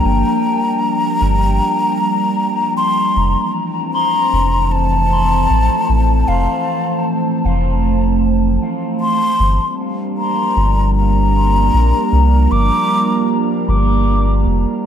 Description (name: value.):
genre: ambient dub.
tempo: 77 BPM.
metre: 4/4.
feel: swing 56% on 16ths.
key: unclear.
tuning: A4 = 440 Hz.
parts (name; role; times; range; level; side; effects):
mellow hollow concert flute; melody; 0.0-13.3 s; F5 to D6; -17 LUFS; left 2 dB; dub echo.
warbly tape-like pad; sustained chords; 0.0-14.9 s; E3 to C5; -18 LUFS; right 2 dB; chorus, built-in reverb.
soft dub sub bass; bass; 0.0-14.7 s; F1 to C2; -15 LUFS; equal; tube saturation.
room: light reverb, small room ambience.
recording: none.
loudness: -13 LUFS.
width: side -9 dB against mid.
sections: 0.0-3.2 A section; 3.2-14.9 B section.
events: none.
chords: 0.0 Gm7; 3.2 Fmaj7; 9.4 Gm7.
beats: | 0.04 0.82 1.60 2.38 | 3.16 3.94 4.72 5.50 | 6.28 7.06 7.84 8.62 | 9.39 10.18 10.95 11.73 | 12.51 13.29 14.07 14.85.